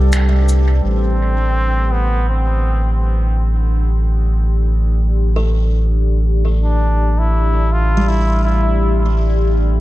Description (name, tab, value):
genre	ambient dub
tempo	83 BPM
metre	4/4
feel	straight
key	A minor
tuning	A4 = 441 Hz
part	deep dark ambient pad	sustained chords	0.0-9.8 s	D4 to E5	-25 LUFS	left 3 dB	chorus, built-in reverb
part	buzzing kalimba	arpeggios	0.0-9.8 s	G3 to B4	-26 LUFS	right 1 dB	low-pass filter, tape echo
part	soft dub sub bass	bass	0.0-9.8 s	A1 to C2	-14 LUFS	equal	none
part	cabasa and finger snaps	drums	0.1-0.6 s	none	-27 LUFS	equal	low-pass filter on perc, low-pass filter on snare, low-pass filter on room, dub echo
part	trombone with straight mute	melody	0.8-9.1 s	B3 to F4	-23 LUFS	equal	dub echo
room	studio reverb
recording	none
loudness	-13 LUFS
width	side -16 dB against mid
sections	0.8-9.8 A section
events	band accent 0.1-0.5; filter sweep on kalimba 0.8-9.8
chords	0.0 Am11; 0.8 A7sus4